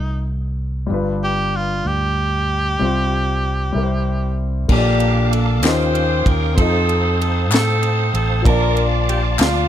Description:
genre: slow gospel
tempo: 64 BPM (dotted quarters)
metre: 6/8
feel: straight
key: F major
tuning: A4 = 440 Hz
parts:
  - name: edgy tenor saxophone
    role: melody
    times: 0.0-4.4 s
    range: Eb4 to G4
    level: -22 LUFS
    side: right 2 dB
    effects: none
  - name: warm grand piano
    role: accompaniment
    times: 0.0-9.7 s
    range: G2 to A5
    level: -23 LUFS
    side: left 4 dB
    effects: none
  - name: fingered electric bass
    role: bass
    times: 0.0-9.7 s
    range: G1 to A2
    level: -20 LUFS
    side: equal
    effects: none
  - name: clear saxophone section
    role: melody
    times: 4.7-9.7 s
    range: A3 to C5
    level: -20 LUFS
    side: equal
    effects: none
  - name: bright tonewheel organ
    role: sustained chords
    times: 4.7-9.7 s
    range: Bb3 to Eb6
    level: -26 LUFS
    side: right 3 dB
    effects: fast rotary speaker, chorus vibrato
  - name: tight funk drum kit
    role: drums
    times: 4.7-9.5 s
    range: crash cymbal, kick drum, ride cymbal, snare drum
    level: -19 LUFS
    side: equal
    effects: none
  - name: group handclap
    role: percussion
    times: 5.6-9.7 s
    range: none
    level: -24 LUFS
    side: left 6 dB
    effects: none
room: light reverb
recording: none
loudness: -16 LUFS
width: side -10 dB against mid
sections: 0.0-4.7 A section; 4.7-9.7 B section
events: none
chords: 0.0 F7; 0.9 G7; 2.8 Csus4; 3.7 C; 4.7 Bbmaj7; 5.6 Eb9; 6.6 F7; 8.5 Bbmaj7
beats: | 0.91 1.85 | 2.80 3.75 | 4.69 5.63 | 6.57 7.51 | 8.45 9.39

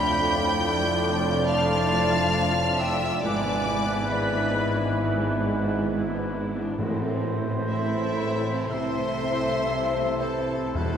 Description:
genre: classical, slow romantic movement for symphony orchestra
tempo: 53-70 BPM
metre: 4/4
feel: rubato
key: A minor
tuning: A4 = 439 Hz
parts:
  - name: dark symphonic violin section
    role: melody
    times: 0.0-11.0 s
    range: E5 to G6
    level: -32 LUFS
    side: left 2 dB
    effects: none
  - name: clear chamber violin section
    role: second line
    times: 0.0-11.0 s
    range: E4 to G5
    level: -32 LUFS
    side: left 3 dB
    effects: none
  - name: dark clarinet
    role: second line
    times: 0.0-11.0 s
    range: E4 to F4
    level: -36 LUFS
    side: left 2 dB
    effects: none
  - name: mellow cor anglais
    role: second line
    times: 0.0-11.0 s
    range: A4 to D5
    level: -33 LUFS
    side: right 3 dB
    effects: none
  - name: mellow silver concert flute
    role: second line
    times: 0.0-11.0 s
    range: A4 to B5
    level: -30 LUFS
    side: equal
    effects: none
  - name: dark studio viola section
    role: accompaniment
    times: 0.0-11.0 s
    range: F3 to A4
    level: -33 LUFS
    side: right 2 dB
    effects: none
  - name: clear trombone section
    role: sustained chords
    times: 0.0-11.0 s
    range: G#2 to F3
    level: -33 LUFS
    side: right 1 dB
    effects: none
  - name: dark French horn section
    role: sustained chords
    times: 0.0-11.0 s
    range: A3 to E4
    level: -31 LUFS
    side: left 2 dB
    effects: none
  - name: rich chamber double bass section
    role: bass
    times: 0.0-11.0 s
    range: E1 to C2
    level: -32 LUFS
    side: right 1 dB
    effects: none
  - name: rich symphonic cello section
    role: bass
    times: 0.0-11.0 s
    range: E2 to C3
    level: -31 LUFS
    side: right 1 dB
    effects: none
  - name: timpani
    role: percussion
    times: 6.8-11.0 s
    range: E2 to A2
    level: -33 LUFS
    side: left 1 dB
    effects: none
room: wet cathedral reverb, RT60 5.3 s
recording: recorded in a church or concert hall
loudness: -22 LUFS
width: side -8 dB against mid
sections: 0.0-11.0 A section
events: none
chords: 0.0 Dm/F; 3.2 E7/G#; 6.8 Am; 8.7 Am/C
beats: 0.62 1.49 2.35 | 3.24 4.11 5.00 5.89 | 6.79 7.69 8.70 9.70 | 10.76

